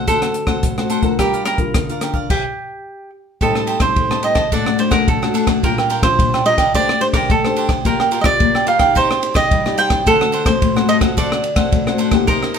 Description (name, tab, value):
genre	samba and choro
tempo	108 BPM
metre	4/4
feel	straight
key	unclear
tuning	A4 = 440 Hz
part	cavaquinho	accompaniment	0.0-12.6 s	D4 to A5	-22 LUFS	right 5 dB	none
part	nylon-string guitar	accompaniment	0.0-12.6 s	A2 to D5	-20 LUFS	left 5 dB	none
part	cavaquinho	melody	0.1-12.6 s	G4 to G5	-18 LUFS	right 2 dB	none
part	compact cocktail drum kit	drums	0.1-12.6 s	crash cymbal, hi-hat, kick drum, ride cymbal, rim click	-19 LUFS	equal	none
room	moderate studio reverb, RT60 0.7 s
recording	minimal, uncompressed stereo recording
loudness	-14 LUFS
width	side -7 dB against mid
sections	0.0-3.4 A section; 3.4-12.6 B section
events	stop 2.3-3.4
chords	0.0 D7; 1.2 Gm7; 3.4 Am7b5; 4.5 D/A; 5.6 Gm7/Bb; 6.7 D7sus4/A; 7.8 Gm7/Bb; 9.0 Cmadd9; 10.1 D7